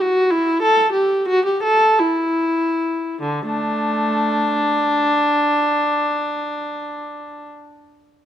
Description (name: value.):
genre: classical, baroque-style suite movement for unaccompanied viola.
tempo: 46-68 BPM (dotted quarters).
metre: 12/8.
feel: rubato.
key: D major.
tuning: A4 = 440 Hz.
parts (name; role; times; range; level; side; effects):
dark viola; solo; 0.0-7.5 s; D3 to A4; -17 LUFS; equal; none.
room: moderate recital hall reverb, RT60 1.5 s.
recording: close, detailed microphones.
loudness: -16 LUFS.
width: side -10 dB against mid.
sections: 0.0-3.2 A section; 3.2-8.0 B section.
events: slowing down 0.0-3.2.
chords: none.